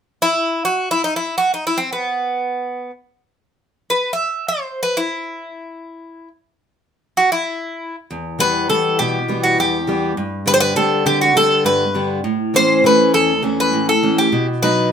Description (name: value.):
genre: greek folk.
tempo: free time.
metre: none.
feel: none.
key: E minor.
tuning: A4 = 440 Hz.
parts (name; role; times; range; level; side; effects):
Greek bouzouki; melody; 0.2-14.9 s; B3 to E5; -16 LUFS; equal; none.
fingerpicked steel-string acoustic guitar; accompaniment; 8.1-14.9 s; E2 to D#4; -18 LUFS; equal; none.
room: moderate studio reverb, RT60 0.6 s.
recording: minimal, uncompressed stereo recording.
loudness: -15 LUFS.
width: side -7 dB against mid.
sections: 0.0-8.1 A section; 8.1-14.9 B section.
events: none.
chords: 0.0 N.C.; 8.1 Em; 10.2 G; 12.3 A; 14.3 B.